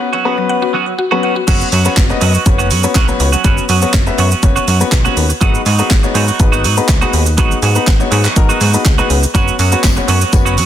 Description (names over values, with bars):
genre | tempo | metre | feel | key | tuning
dance-pop | 122 BPM | 4/4 | straight | unclear | A4 = 440 Hz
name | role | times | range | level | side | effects
warm concert grand piano | accompaniment | 0.0-10.5 s | B3 to E5 | -18 LUFS | left 5 dB | none
clean electric guitar | riff | 0.0-10.7 s | F#3 to F#4 | -18 LUFS | right 6 dB | lush chorus
mallet-like synth pluck | arpeggios | 0.1-1.5 s | F#3 to F#5 | -20 LUFS | left 3 dB | chorus, sidechain pumping, digital delay
plucky analog bass | bass | 1.5-10.7 s | F#1 to G#2 | -15 LUFS | equal | sidechain pumping
house drum kit | drums | 1.5-10.7 s | crash cymbal, handclaps, hi-hat, kick drum, shaker, snare drum | -14 LUFS | equal | none
tambourine | percussion | 9.3-10.7 s | none | -30 LUFS | left 12 dB | none
room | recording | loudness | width
digital ambience | dense, heavily limited modern master | -10 LUFS | side -11 dB against mid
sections
0.0-1.5 A section; 1.5-10.7 B section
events
break 0.0-1.5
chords
0.0 F#sus4; 5.4 G#m7; 9.3 F#sus4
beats
0.00 0.49 0.99 | 1.48 1.97 2.46 2.95 | 3.44 3.94 4.43 4.92 | 5.41 5.90 6.40 6.89 | 7.38 7.87 8.36 8.86 | 9.35 9.84 10.33